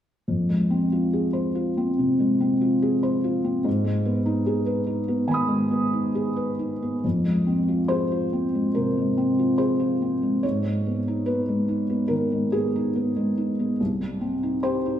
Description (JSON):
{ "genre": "neoclassical minimalist piano", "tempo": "71 BPM", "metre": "4/4", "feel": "rubato", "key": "F minor", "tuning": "A4 = 440 Hz", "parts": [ { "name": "felt-muted upright piano", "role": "solo", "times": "0.3-15.0 s", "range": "C2 to Eb6", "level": "-21 LUFS", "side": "equal", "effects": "none" } ], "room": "wet recital hall reverb, RT60 1.4 s", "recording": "recorded in a church or concert hall", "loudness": "-21 LUFS", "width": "side -10 dB against mid", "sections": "0.3-7.0 A section; 7.0-15.0 B section", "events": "none", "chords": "0.3 Fm; 3.7 Abm; 7.0 Fm; 10.4 Abm; 13.8 Cm" }